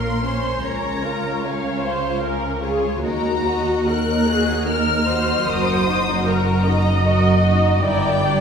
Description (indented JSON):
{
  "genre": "classical, slow romantic movement for string orchestra",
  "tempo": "75 BPM",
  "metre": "3/4",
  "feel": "rubato",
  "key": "unclear",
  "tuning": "A4 = 439 Hz",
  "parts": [
    { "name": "rich studio violin section", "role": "melody", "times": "0.0-8.4 s", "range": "F5 to Gb6", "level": "-26 LUFS", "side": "left 4 dB", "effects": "none" },
    { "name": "rich studio violin section", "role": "second line", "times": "0.0-8.4 s", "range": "Bb3 to Eb5", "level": "-25 LUFS", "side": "left 3 dB", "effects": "none" },
    { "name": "rich studio viola section", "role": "accompaniment", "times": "0.0-8.4 s", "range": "Gb4 to Eb5", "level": "-23 LUFS", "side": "right 1 dB", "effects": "none" },
    { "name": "rich studio cello section", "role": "bass", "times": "0.0-8.4 s", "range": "Db2 to Bb2", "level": "-24 LUFS", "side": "right 3 dB", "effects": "none" },
    { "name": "rich studio double bass section", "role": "bass", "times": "0.0-8.4 s", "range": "Gb1 to Eb2", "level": "-23 LUFS", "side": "right 1 dB", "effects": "none" }
  ],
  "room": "wet scoring stage reverb, RT60 1.9 s",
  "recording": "heard from further back in the room",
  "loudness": "-17 LUFS",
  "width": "side -7 dB against mid",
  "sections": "0.0-8.4 A section",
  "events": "none",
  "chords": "0.0 Bbm; 0.7 Bbm/Db; 3.0 Ebm; 5.5 Ebm/Gb; 7.8 Em7b5/G",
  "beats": "| 0.65 1.46 2.25 | 3.04 3.88 4.67 | 5.47 6.27 7.04 | 7.82"
}